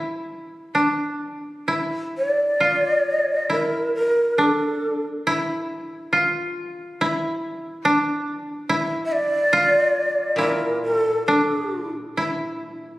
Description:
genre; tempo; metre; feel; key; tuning
japanese traditional, Japanese chamber music; 69 BPM; 4/4; uneven beats, rubato; D hirajoshi; A4 = 441 Hz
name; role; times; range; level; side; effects
koto; second line; 0.0-13.0 s; D4 to F4; -23 LUFS; equal; none
breathy hollow shakuhachi; melody; 2.2-11.9 s; A4 to E5; -20 LUFS; equal; none
koto; accompaniment; 10.4-13.0 s; Bb2; -30 LUFS; left 1 dB; none
room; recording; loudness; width
moderate concert hall reverb, RT60 2.0 s; recorded on a phone in the room, studio reverb; -19 LUFS; side -17 dB against mid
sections
0.0-1.7 A section; 1.7-13.0 B section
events
none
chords
none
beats
0.71 | 1.65 2.58 3.48 4.37 | 5.24 6.11 6.96 7.82 | 8.67 9.52 10.38 11.26 | 12.15

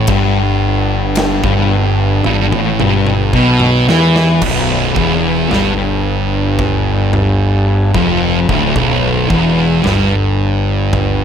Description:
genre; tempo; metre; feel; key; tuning
stoner and doom metal; 55 BPM; 4/4; straight; unclear; A4 = 439 Hz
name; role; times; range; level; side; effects
thick fuzz guitar; riff; 0.0-11.2 s; B1 to E3; -15 LUFS; left 6 dB; distortion
thick fuzz guitar; riff; 0.0-11.2 s; B1 to E3; -16 LUFS; right 8 dB; distortion
fuzz fingered electric bass; bass; 0.0-11.2 s; B0 to E2; -19 LUFS; equal; overdrive
big rock drum kit; drums; 0.1-11.2 s; crash cymbal, kick drum, ride cymbal, snare drum, toms; -20 LUFS; equal; none
room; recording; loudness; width
light reverb; none; -11 LUFS; side -8 dB against mid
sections
0.0-4.4 A section; 4.4-11.2 B section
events
drum fill 2.2-4.4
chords
0.0 G69; 4.4 N.C.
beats
| 0.08 1.16 2.25 3.33 | 4.42 5.50 6.59 7.67 | 8.76 9.85 10.93

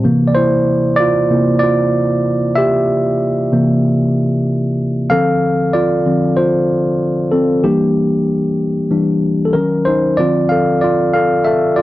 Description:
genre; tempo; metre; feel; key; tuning
soul; 95 BPM; 4/4; straight; unclear; A4 = 442 Hz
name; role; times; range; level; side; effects
tine electric piano; solo; 0.0-11.8 s; C3 to F5; -12 LUFS; equal; none
room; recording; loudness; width
light reverb; dry, close 1970s-style studio recording; -12 LUFS; side -16 dB against mid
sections
0.0-5.1 A section; 5.1-11.8 B section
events
tine electric piano solo 0.0-5.1, 5.1-11.8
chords
0.0 C9; 5.1 Dm7; 7.6 Em7b5; 9.5 Ebm7; 10.2 Dm7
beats
| 0.04 0.68 1.31 1.94 | 2.57 3.21 3.84 4.47 | 5.11 5.74 6.38 7.01 | 7.64 8.28 8.91 9.55 | 10.18 10.82 11.45

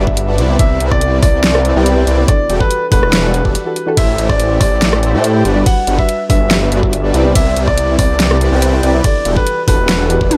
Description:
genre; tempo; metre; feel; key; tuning
future bass; 142 BPM; 4/4; half-time; unclear; A4 = 440 Hz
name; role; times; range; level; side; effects
clear concert grand piano; melody; 0.0-10.4 s; B4 to F#5; -21 LUFS; equal; sidechain pumping
soft supersaw; riff; 0.0-10.3 s; G3 to G5; -22 LUFS; equal; sidechain pumping
detuned saw bass; bass; 0.0-10.3 s; E1 to A2; -17 LUFS; equal; chorus, sidechain pumping
soft round pluck; accompaniment; 0.1-10.2 s; C3 to G5; -24 LUFS; equal; analog chorus, sidechain pumping
electronic kick drum; drums; 0.1-10.3 s; none; -16 LUFS; equal; overdrive
dubstep drum kit; drums; 0.2-10.4 s; hi-hat, ride cymbal, rim click, snare drum, toms; -20 LUFS; equal; overdrive
room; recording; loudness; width
light reverb; none; -13 LUFS; mono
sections
0.0-10.4 A section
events
none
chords
0.4 Cmaj9; 2.3 Em11; 4.0 Am7; 5.5 Gmaj7; 7.1 Cmaj9; 9.0 Em11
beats
0.17 | 0.59 1.02 1.44 1.86 | 2.28 2.71 3.13 3.55 | 3.97 4.40 4.82 5.24 | 5.66 6.09 6.51 6.93 | 7.35 7.78 8.20 8.62 | 9.04 9.47 9.89 10.31

